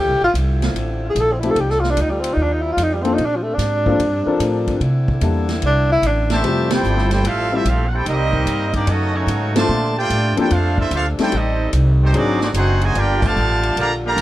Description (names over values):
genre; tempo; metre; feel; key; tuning
jazz, big band swing; 148 BPM; 4/4; swing 66% on 8ths; F major; A4 = 441 Hz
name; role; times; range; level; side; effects
mellow tenor saxophone; melody; 0.0-6.4 s; F3 to A4; -19 LUFS; equal; tape echo
warm saxophone section; sustained chords; 0.0-14.2 s; Bb2 to A4; -27 LUFS; left 1 dB; none
upright bass; bass; 0.0-14.2 s; F1 to C3; -19 LUFS; equal; none
swinging big-band drum kit; drums; 0.4-14.2 s; crash cymbal, hi-hat, kick drum, ride cymbal, snare drum; -26 LUFS; right 1 dB; none
warm grand piano; accompaniment; 1.4-12.4 s; F3 to C5; -20 LUFS; left 4 dB; none
bright trumpet section; melody; 6.3-14.2 s; A3 to Bb5; -21 LUFS; right 1 dB; none
bright trombone section; second line; 6.3-14.2 s; C3 to G4; -25 LUFS; right 3 dB; none
room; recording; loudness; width
light reverb; none; -15 LUFS; side -15 dB against mid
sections
0.0-6.4 A section; 6.4-14.2 B section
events
tenor saxophone solo 0.0-6.4; band accent 6.6, 9.5, 13.2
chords
0.0 Dm9; 1.6 F7sus2; 3.2 Bbmaj9; 4.8 C13; 6.4 Fmaj9; 8.1 Cm7; 8.9 B9; 9.7 Bbmaj9; 11.3 Am7b5; 12.1 Ab7#11; 12.9 Gm7